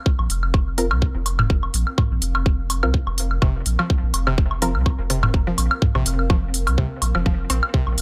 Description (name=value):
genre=minimal techno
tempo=125 BPM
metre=4/4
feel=swing 55% on 16ths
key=unclear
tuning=A4 = 439 Hz
part: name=granular cloud pad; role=texture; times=0.0-8.0 s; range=C4 to F5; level=-38 LUFS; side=equal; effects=built-in reverb, sidechain pumping
part: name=electronic kick drum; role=drums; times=0.1-7.8 s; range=none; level=-22 LUFS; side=equal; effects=none
part: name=round analog bass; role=bass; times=0.2-8.0 s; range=F1 to C2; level=-25 LUFS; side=equal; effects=sidechain pumping
part: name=electronic woodblock and toms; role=percussion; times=0.2-8.0 s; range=none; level=-27 LUFS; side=equal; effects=dub echo
part: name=electronic hi-hat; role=drums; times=0.3-8.0 s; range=none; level=-27 LUFS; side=equal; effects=none
part: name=filtered dub chord stab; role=stabs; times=0.8-4.7 s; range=C4 to Bb4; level=-30 LUFS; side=equal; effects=chorus, dub echo
part: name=mallet-like synth pluck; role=riff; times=3.4-7.8 s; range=C3 to C4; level=-30 LUFS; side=equal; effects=chorus, sidechain pumping, dub echo
room=little or no reverb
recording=none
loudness=-21 LUFS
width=mono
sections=0.0-8.0 A section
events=fade-in on ambient pad 0.0-8.0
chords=0.0 Fsus4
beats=0.06 0.54 1.02 | 1.50 1.98 2.46 2.94 | 3.42 3.90 4.38 4.86 | 5.34 5.82 6.30 6.78 | 7.26 7.74